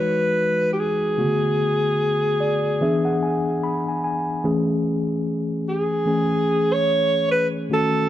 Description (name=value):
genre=soul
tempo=74 BPM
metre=4/4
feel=swing 58% on 16ths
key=unclear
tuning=A4 = 440 Hz
part: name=mellow alto saxophone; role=melody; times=0.0-8.1 s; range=G4 to C#5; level=-21 LUFS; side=equal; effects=none
part: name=mellow tine electric piano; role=accompaniment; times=0.0-8.1 s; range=C#3 to B5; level=-22 LUFS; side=left 1 dB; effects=medium stereo tremolo
room=moderate echo chamber reverb, RT60 2.3 s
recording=dark, warm production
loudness=-19 LUFS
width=side -12 dB against mid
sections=0.0-8.1 A section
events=tine electric piano fill 2.0-4.4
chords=0.0 Emaj9; 1.2 Bm7; 2.8 E7; 4.4 Amaj7